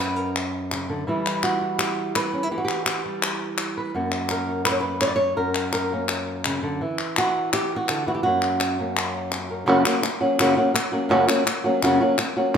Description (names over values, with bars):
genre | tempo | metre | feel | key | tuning
flamenco | 167 BPM | 4/4 | straight | unclear | A4 = 440 Hz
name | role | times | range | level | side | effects
flamenco guitar | melody | 0.0-12.6 s | F#2 to D5 | -22 LUFS | equal | none
palmas hand claps | percussion | 0.4-12.6 s | none | -26 LUFS | left 3 dB | none
room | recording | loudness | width
wet large studio reverb, RT60 1.2 s | none | -20 LUFS | side -7 dB against mid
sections
0.0-9.7 A section; 9.7-12.6 B section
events
none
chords
0.0 F#; 1.1 Emadd9; 3.9 F#; 6.8 Esus2; 8.2 F#